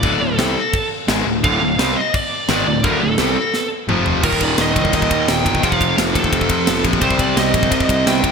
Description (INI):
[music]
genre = heavy metal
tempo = 172 BPM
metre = 4/4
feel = straight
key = D phrygian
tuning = A4 = 440 Hz
[part]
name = high-gain lead guitar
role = melody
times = 0.0-8.3 s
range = A4 to G5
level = -21 LUFS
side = right 2 dB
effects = distortion, digital delay
[part]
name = distorted electric guitar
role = riff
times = 0.0-8.3 s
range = D2 to C4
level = -24 LUFS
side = equal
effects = none
[part]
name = heavy high-gain guitar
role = riff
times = 0.0-8.3 s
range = D2 to C4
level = -21 LUFS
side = left 11 dB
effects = distortion
[part]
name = fuzz picked electric bass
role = bass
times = 0.0-8.3 s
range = D1 to F2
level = -24 LUFS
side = equal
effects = overdrive
[part]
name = tight metal drum kit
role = drums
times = 0.0-8.3 s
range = crash cymbal, kick drum, ride cymbal, snare drum, toms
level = -20 LUFS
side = equal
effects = gated reverb
[part]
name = distorted electric guitar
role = riff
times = 1.4-8.3 s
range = D2 to C4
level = -22 LUFS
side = right 10 dB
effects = overdrive
[sound]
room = moderate lush hall reverb, RT60 1.7 s, small room ambience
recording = bright 1980s-style digital production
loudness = -14 LUFS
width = side -5 dB against mid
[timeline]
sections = 0.0-4.2 A section; 4.2-8.3 B section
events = drum fill 3.5-4.2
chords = 0.0 D5; 3.9 F5; 4.2 Eb; 5.6 F; 7.0 Cm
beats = | 0.03 0.38 0.73 1.08 | 1.44 1.78 2.13 2.48 | 2.83 3.19 3.54 3.88 | 4.23 4.58 4.93 5.28 | 5.63 5.97 6.32 6.67 | 7.02 7.37 7.71 8.06